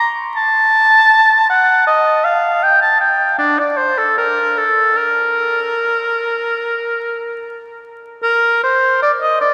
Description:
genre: classical, baroque-style fantasia for unaccompanied oboe.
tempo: 72-80 BPM.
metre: 4/4.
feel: rubato.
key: unclear.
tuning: A4 = 440 Hz.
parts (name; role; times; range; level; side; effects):
clear oboe; solo; 0.0-9.5 s; D4 to A5; -14 LUFS; equal; none.
room: wet cathedral reverb, RT60 6.6 s.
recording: heard from further back in the room, vinyl crackle.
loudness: -14 LUFS.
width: mono.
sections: 0.0-8.2 A section; 8.2-9.5 B section.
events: none.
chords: none.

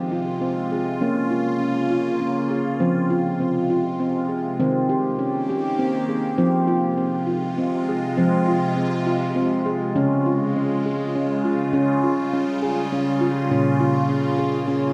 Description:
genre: world meditative, meditative tuned percussion.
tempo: 101 BPM.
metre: 3/4.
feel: straight.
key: F minor.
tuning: A4 = 440 Hz.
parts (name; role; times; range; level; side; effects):
evolving wavetable pad; sustained chords; 0.0-14.9 s; C3 to G4; -28 LUFS; equal; phaser, built-in reverb.
handpan; arpeggios; 0.0-14.9 s; Bb2 to Ab4; -23 LUFS; equal; none.
room: wet echo chamber reverb, RT60 1.7 s.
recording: none.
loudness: -22 LUFS.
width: mono.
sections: 0.0-10.0 A section; 10.0-14.9 B section.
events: none.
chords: 0.0 Fm; 1.0 Bbm; 2.8 Fm; 4.6 Eb; 6.4 Fm; 10.0 Db; 13.5 Bbm.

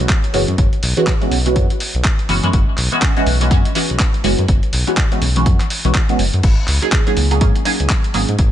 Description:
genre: deep house.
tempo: 123 BPM.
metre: 4/4.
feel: swing 59% on 16ths.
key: unclear.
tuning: A4 = 441 Hz.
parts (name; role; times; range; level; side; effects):
filtered dub chord stab; stabs; 0.0-8.3 s; Fb3 to Ab4; -19 LUFS; right 1 dB; phaser, lush chorus, sidechain pumping, ping-pong delay.
smooth synth bass; bass; 0.0-8.5 s; Gb1 to Ab2; -18 LUFS; equal; sidechain pumping.
dusty soul sampler-style drum kit; drums; 0.0-8.5 s; crash cymbal, handclaps, hi-hat; -22 LUFS; equal; none.
electronic kick drum; drums; 0.1-8.5 s; none; -16 LUFS; equal; none.
room: little or no reverb.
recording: nothing above 10.8 kHz.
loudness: -13 LUFS.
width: side -11 dB against mid.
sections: 0.0-8.5 A section.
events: none.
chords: 0.0 Gb9sus4; 6.4 Ab9sus4.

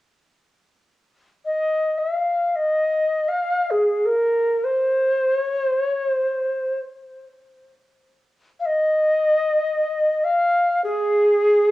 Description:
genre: world meditative, free-time meditation music.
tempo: free time.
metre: none.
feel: none.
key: unclear.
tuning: A4 = 440 Hz.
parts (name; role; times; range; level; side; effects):
Native American-style cedar flute; solo; 1.5-11.7 s; Ab4 to F5; -18 LUFS; equal; cassette tape.
room: wet studio reverb, RT60 0.5 s.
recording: home recording on cassette.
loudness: -18 LUFS.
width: side -17 dB against mid.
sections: 0.6-11.7 A section.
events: none.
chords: none.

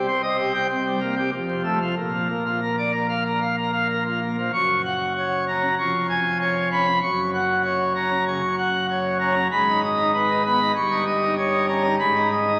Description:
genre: classical, organ toccata.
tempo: 96 BPM.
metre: 4/4.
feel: straight.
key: F# major from 4.5 s.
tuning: A4 = 440 Hz.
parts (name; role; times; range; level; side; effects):
pipe organ, plenum; solo; 0.0-12.6 s; F1 to C#6; -22 LUFS; equal; none.
room: wet church reverb, RT60 2.8 s.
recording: very old 78 rpm record, vinyl crackle.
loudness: -22 LUFS.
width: mono.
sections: 0.0-4.5 A section; 4.5-12.6 B section.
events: none.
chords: 0.0 Cm; 0.7 C5; 1.3 F; 2.0 Bb; 4.5 F#; 5.8 C#7/E#; 7.0 F#; 9.5 G#m; 10.8 D#7/G; 12.0 G#m.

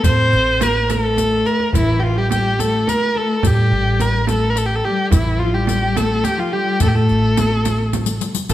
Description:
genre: Persian modal ensemble.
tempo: 71 BPM (dotted quarters).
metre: 6/8.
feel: straight.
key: A dastgah shur.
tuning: A4 = 440 Hz.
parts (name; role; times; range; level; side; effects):
rich kamancheh; melody; 0.0-8.5 s; E4 to C5; -19 LUFS; equal; none.
concert harp; second line; 0.0-8.5 s; E4 to C5; -28 LUFS; right 5 dB; none.
dark cello; second line; 0.0-8.5 s; E3 to C4; -23 LUFS; left 4 dB; none.
upright bass; bass; 0.0-8.5 s; A1 to A2; -19 LUFS; right 1 dB; none.
frame drum; percussion; 0.0-8.5 s; none; -24 LUFS; right 5 dB; none.
riq; percussion; 0.0-8.5 s; none; -28 LUFS; left 6 dB; none.
tombak; percussion; 0.0-8.5 s; none; -22 LUFS; left 1 dB; none.
room: moderate recital hall reverb, RT60 1.3 s.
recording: none.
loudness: -15 LUFS.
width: side -13 dB against mid.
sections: 0.0-8.5 A section.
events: drum fill 1.2-1.7, 7.9-8.5.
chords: none.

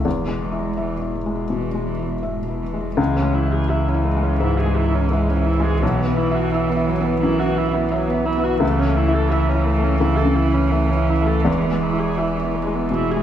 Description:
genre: neoclassical piano and strings.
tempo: 84 BPM.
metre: 4/4.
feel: rubato.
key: C# minor.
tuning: A4 = 438 Hz.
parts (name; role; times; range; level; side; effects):
warm cello; second line; 0.0-13.2 s; G#2 to G#3; -25 LUFS; right 6 dB; none.
felt-muted upright piano; accompaniment; 0.0-13.2 s; B1 to E5; -21 LUFS; left 3 dB; none.
sub bass with octave; bass; 0.0-13.2 s; E1 to C#2; -24 LUFS; equal; none.
dark viola; accompaniment; 3.0-13.2 s; F#3 to A4; -24 LUFS; right 3 dB; none.
room: wet recital hall reverb, RT60 1.4 s.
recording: recorded in a church or concert hall.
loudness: -17 LUFS.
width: side -10 dB against mid.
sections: 0.0-3.0 A section; 3.0-13.2 A section.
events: none.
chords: 0.0 E; 3.0 C#m; 5.8 Bsus4; 8.6 A/C#; 11.5 E.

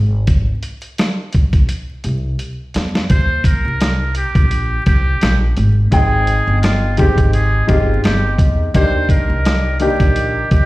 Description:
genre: hip hop, boom-bap hip-hop.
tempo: 85 BPM.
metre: 4/4.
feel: swing 55% on 16ths.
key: Eb major.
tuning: A4 = 440 Hz.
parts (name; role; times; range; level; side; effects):
upright bass; bass; 0.0-10.7 s; G1 to Fb2; -17 LUFS; equal; none.
dusty soul sampler-style drum kit; drums; 0.3-10.7 s; hi-hat, kick drum, rim click, snare drum; -15 LUFS; equal; none.
trumpet with metal mute; melody; 3.1-10.7 s; F4 to C5; -21 LUFS; right 1 dB; high-pass filter, low-pass filter, plate reverb, analog delay.
warm upright piano; accompaniment; 5.9-10.7 s; Eb3 to G5; -19 LUFS; left 2 dB; cassette tape, high-pass filter, low-pass filter, plate reverb.
room: light reverb.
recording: played on a big sound system in a bare room, stone room reverb, vinyl crackle.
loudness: -13 LUFS.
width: side -19 dB against mid.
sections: 0.0-3.1 A section; 3.1-10.7 B section.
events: break 0.0-3.1; drum fill 1.7-3.1.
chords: 0.0 Ab; 3.1 Eb; 5.6 Abmaj7; 8.7 Ebmaj7.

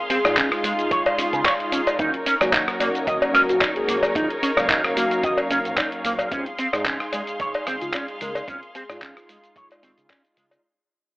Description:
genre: nu-disco, nu disco.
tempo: 111 BPM.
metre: 4/4.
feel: swing 54% on 16ths.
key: unclear.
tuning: A4 = 439 Hz.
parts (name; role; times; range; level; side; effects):
clear studio string section; sustained chords; 0.0-10.6 s; Eb4 to C6; -28 LUFS; equal; vintage 12-bit sampler grit, sidechain pumping.
soft octave-layered synth lead; melody; 0.1-9.3 s; F4 to Bb4; -28 LUFS; left 1 dB; chorus, analog delay.
electric guitar with an envelope filter; riff; 0.1-10.4 s; Db3 to Eb5; -23 LUFS; right 1 dB; analog chorus, analog delay.
dusty soul sampler-style drum kit; drums; 0.1-10.6 s; handclaps, hi-hat, rim click, shaker; -24 LUFS; equal; none.
mellow synth brass; accompaniment; 0.2-10.6 s; Gb3 to F5; -28 LUFS; equal; chorus, sidechain pumping, analog delay.
fingered electric bass with an envelope filter; bass; 0.2-10.6 s; Ab1 to Db3; -37 LUFS; equal; none.
cowbell; percussion; 0.3-10.6 s; none; -25 LUFS; left 1 dB; none.
electronic kick drum; drums; 0.4-10.2 s; none; -35 LUFS; equal; overdrive.
room: light reverb.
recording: dry, gritty hardware recording, telephone sound.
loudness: -19 LUFS.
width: side -21 dB against mid.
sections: 0.0-10.6 A section.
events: drop 0.0-10.6; fade-out 4.9-10.6.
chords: 0.0 Dbmaj7; 2.0 Ebm7; 6.3 Dbmaj7.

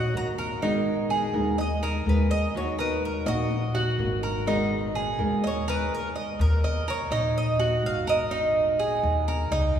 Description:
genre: latin.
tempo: 125 BPM.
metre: 4/4.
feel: straight.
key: Eb minor.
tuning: A4 = 440 Hz.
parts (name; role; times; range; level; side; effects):
Cuban tres; melody; 0.0-9.8 s; Gb4 to Bb5; -29 LUFS; right 1 dB; none.
Cuban tres; arpeggios; 0.0-9.8 s; Eb4 to Eb5; -28 LUFS; right 2 dB; none.
upright bass; bass; 0.0-9.8 s; Ab1 to Eb2; -28 LUFS; left 1 dB; none.
flamenco guitar; accompaniment; 0.1-5.4 s; Eb3 to Bb4; -30 LUFS; left 1 dB; none.
room: wet cathedral reverb, RT60 4.8 s.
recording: recorded in a church or concert hall, small room ambience.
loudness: -23 LUFS.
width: side -9 dB against mid.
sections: 0.0-6.4 A section; 6.4-9.8 B section.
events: Cuban tres solo 0.0-6.4; stop 5.4-6.4.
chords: 0.0 Ebm; 0.6 Abmadd9; 2.5 Ebm; 4.5 Abmadd9; 6.4 Ebm; 8.3 Absus2.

